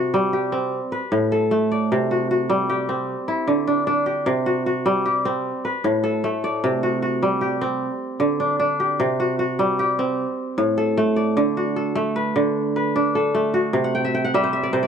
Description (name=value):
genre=west african traditional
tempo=101 BPM (dotted quarters)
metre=12/8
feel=straight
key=C lydian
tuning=A4 = 435 Hz
part: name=kora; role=solo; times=0.0-14.9 s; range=A2 to G5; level=-19 LUFS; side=equal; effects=none
room=small room reverb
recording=dry, close 1970s-style studio recording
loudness=-19 LUFS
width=side -7 dB against mid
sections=0.0-11.4 A section; 11.4-14.9 B section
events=kora fill 13.8-14.9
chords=0.0 C5; 0.7 Asus24; 1.9 C5; 3.1 Dsus24; 4.3 C5; 5.5 Asus24; 6.6 C5; 7.8 Dsus4; 9.0 C5; 10.2 Asus4; 11.4 D; 13.7 C5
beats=0.14 0.73 1.32 | 1.91 2.50 3.09 3.68 | 4.27 4.86 5.45 6.04 | 6.63 7.23 7.82 8.41 | 9.00 9.60 10.19 10.78 | 11.37 11.96 12.56 13.15 | 13.74 14.34